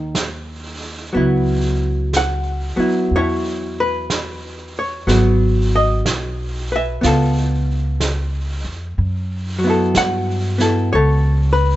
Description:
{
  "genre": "jazz ballad",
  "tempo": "61 BPM",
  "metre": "4/4",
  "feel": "swing 66% on 8ths",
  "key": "C# minor",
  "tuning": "A4 = 440 Hz",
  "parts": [
    { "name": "archtop guitar, miked and amplified", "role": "accompaniment", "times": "0.0-11.8 s", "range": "Eb3 to F#5", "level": "-19 LUFS", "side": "equal", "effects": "none" },
    { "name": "upright bass", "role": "bass", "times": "0.0-11.8 s", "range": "G#1 to G2", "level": "-19 LUFS", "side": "equal", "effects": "none" },
    { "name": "vintage brush drum kit", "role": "drums", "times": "0.1-11.8 s", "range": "brushed snare drum, hi-hat, snare drum", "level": "-26 LUFS", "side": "right 3 dB", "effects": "none" }
  ],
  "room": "little or no reverb",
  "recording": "nothing above 8.0 kHz",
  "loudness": "-16 LUFS",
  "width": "side -15 dB against mid",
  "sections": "0.0-1.1 A section; 1.1-11.8 B section",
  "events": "none",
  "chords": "0.0 N.C.; 1.1 C#m7; 5.1 G#m7; 7.0 C#7b13; 9.0 F#m7"
}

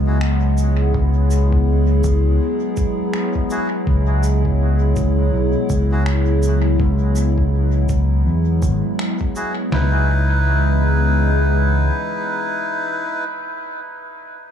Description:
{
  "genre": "ambient dub",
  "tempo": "82 BPM",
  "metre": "4/4",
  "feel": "swing 59% on 16ths",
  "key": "C# minor",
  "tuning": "A4 = 441 Hz",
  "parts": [
    { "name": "warbly tape-like pad", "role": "sustained chords", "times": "0.0-13.4 s", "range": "E3 to G#4", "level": "-22 LUFS", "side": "equal", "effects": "chorus, built-in reverb, phaser" },
    { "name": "fingered electric bass", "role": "bass", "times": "0.0-11.9 s", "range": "G#1 to E2", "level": "-16 LUFS", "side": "equal", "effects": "none" },
    { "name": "melodica", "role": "stabs", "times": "0.1-13.2 s", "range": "D#4 to B4", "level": "-24 LUFS", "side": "equal", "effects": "dub echo" },
    { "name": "electronic finger snaps and shaker", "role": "drums", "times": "0.2-9.5 s", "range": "none", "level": "-34 LUFS", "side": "equal", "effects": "dub echo" },
    { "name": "lo-fi sampler-style drum kit", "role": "drums", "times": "0.9-9.9 s", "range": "kick drum, snare drum", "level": "-22 LUFS", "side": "equal", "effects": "none" }
  ],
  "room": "light reverb, digital ambience",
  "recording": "echo-heavy mix, studio reverb",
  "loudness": "-15 LUFS",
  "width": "side -9 dB against mid",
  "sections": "0.0-9.7 A section; 9.7-12.7 B section",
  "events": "none",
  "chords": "0.0 Eadd9; 9.7 C#m7"
}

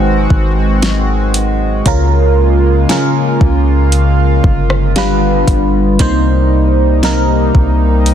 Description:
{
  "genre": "contemporary R&B",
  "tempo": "58 BPM",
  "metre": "4/4",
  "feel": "straight",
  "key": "C phrygian",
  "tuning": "A4 = 440 Hz",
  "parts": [
    { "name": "FM electric piano", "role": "accompaniment", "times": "0.0-8.1 s", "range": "C3 to C5", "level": "-15 LUFS", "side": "right 1 dB", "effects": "chorus, phaser" },
    { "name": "chorused pulse-width pad", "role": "sustained chords", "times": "0.0-8.1 s", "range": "C3 to Gb4", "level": "-18 LUFS", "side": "equal", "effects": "sidechain pumping" },
    { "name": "soft 808-style bass", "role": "bass", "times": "0.0-8.1 s", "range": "G1 to Db2", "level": "-13 LUFS", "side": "equal", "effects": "none" },
    { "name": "worn celesta", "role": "texture", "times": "0.0-6.1 s", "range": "F5 to Ab5", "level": "-25 LUFS", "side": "left 2 dB", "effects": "ping-pong delay" },
    { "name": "smooth R&B drum kit", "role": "drums", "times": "0.3-8.1 s", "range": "hi-hat, kick drum, rim click, snare drum", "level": "-15 LUFS", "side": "equal", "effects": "none" }
  ],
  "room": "light reverb",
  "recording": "dense, heavily limited modern master",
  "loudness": "-9 LUFS",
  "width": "side -9 dB against mid",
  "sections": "0.0-6.0 A section; 6.0-8.1 A section",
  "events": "none",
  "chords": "0.0 Ab7; 1.9 Db6; 5.0 G7; 6.0 Cm7"
}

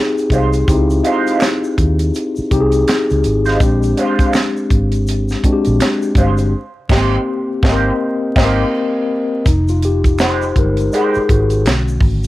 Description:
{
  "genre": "R&B, neo-soul",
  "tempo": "82 BPM",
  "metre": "4/4",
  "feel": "swing 61% on 16ths",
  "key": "F minor",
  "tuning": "A4 = 440 Hz",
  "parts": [
    { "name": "mellow tine electric piano", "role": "accompaniment", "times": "0.0-12.3 s", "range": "D3 to Eb5", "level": "-16 LUFS", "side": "left 2 dB", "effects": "medium stereo tremolo" },
    { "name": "tight funk drum kit", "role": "drums", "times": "0.2-12.3 s", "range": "crash cymbal, hi-hat, kick drum, snare drum", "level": "-16 LUFS", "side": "equal", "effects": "none" },
    { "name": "tube shaker and finger snaps", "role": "percussion", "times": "0.2-12.3 s", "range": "none", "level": "-32 LUFS", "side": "right 2 dB", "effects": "none" },
    { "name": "electric guitar through a small old amp", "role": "second line", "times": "0.3-11.2 s", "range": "Ab3 to C5", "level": "-21 LUFS", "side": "right 4 dB", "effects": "wah, spring reverb" },
    { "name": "vintage muted fingered electric bass", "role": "bass", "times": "0.3-12.3 s", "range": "F1 to Eb2", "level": "-16 LUFS", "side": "equal", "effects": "none" }
  ],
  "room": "moderate studio reverb, RT60 0.5 s",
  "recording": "vinyl crackle",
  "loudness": "-13 LUFS",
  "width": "side -17 dB against mid",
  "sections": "0.0-9.5 A section; 9.5-12.3 B section",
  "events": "band accent 6.5-9.5; tine electric piano fill 8.0-9.5; break 8.7-9.5; tine electric piano solo 9.5-12.3",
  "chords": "0.0 Dbmaj9 (rootless); 3.6 Bb9; 6.5 Abmaj9; 9.5 Fm9; 11.7 Bm9"
}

